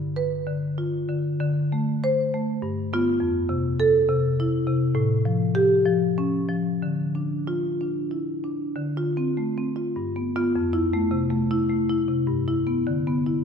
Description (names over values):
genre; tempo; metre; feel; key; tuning
classical, contemporary piece for solo marimba; 90-105 BPM; 3/4; rubato; D dorian; A4 = 439 Hz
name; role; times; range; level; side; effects
marimba with medium mallets; solo; 0.0-13.4 s; F2 to C5; -22 LUFS; left 1 dB; none
room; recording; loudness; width
moderate concert hall reverb, RT60 1.8 s; minimal, uncompressed stereo recording; -22 LUFS; side -6 dB against mid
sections
0.0-8.8 A section; 8.8-13.4 B section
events
none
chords
0.0 G7; 1.4 D5; 2.6 G7; 3.2 Fmaj7; 5.0 Aaug7; 6.8 Dmadd9; 8.8 Dm7; 10.0 G7; 10.5 Fmaj7; 12.3 G6